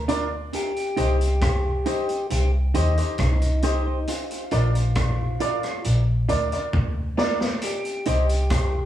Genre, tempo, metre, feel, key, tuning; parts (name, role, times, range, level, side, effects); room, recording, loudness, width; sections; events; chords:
roots reggae; 68 BPM; 4/4; straight; C minor; A4 = 443 Hz
percussive tonewheel organ; melody; 0.0-8.9 s; Eb4 to G4; -30 LUFS; left 2 dB; slow rotary speaker
vintage muted fingered electric bass; bass; 0.0-8.9 s; Bb1 to Eb2; -22 LUFS; equal
clean electric guitar; accompaniment; 0.1-8.2 s; D4 to D5; -30 LUFS; right 6 dB; tape echo
bright grand piano; stabs; 0.1-8.3 s; D4 to Eb5; -29 LUFS; left 2 dB
vintage drum kit; drums; 0.1-8.7 s; hi-hat, kick drum, rim click, snare drum; -28 LUFS; equal
moderate large studio reverb, RT60 1.0 s; band playing live in one room, small room ambience; -21 LUFS; side -12 dB against mid
0.0-8.9 A section
drum fill 6.7-7.6
0.0 Bb; 0.5 Cm; 4.1 Bb; 7.6 Cm